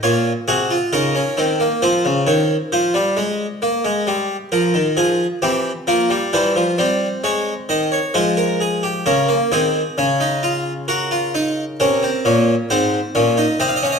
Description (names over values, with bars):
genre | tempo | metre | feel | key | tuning
classical, baroque-style 3-part fugue for harpsichord | 66 BPM | 4/4 | straight | Db major from 9.1 s | A4 = 440 Hz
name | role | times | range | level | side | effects
harpsichord | solo | 0.0-14.0 s | Ab2 to F5 | -16 LUFS | equal | none
room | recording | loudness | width
wet recital hall reverb, RT60 1.3 s | none | -16 LUFS | side -6 dB against mid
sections
0.0-9.1 A section; 9.1-14.0 B section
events
none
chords
0.0 Bbm; 1.8 Fm; 3.6 Eb69; 5.4 C7/E; 7.2 Fm; 9.1 Db; 10.9 Ebm7/Db; 12.7 Ab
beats
0.03 0.93 | 1.82 2.72 3.62 4.52 | 5.42 6.33 7.24 8.15 | 9.07 9.98 10.89 11.80 | 12.71 13.61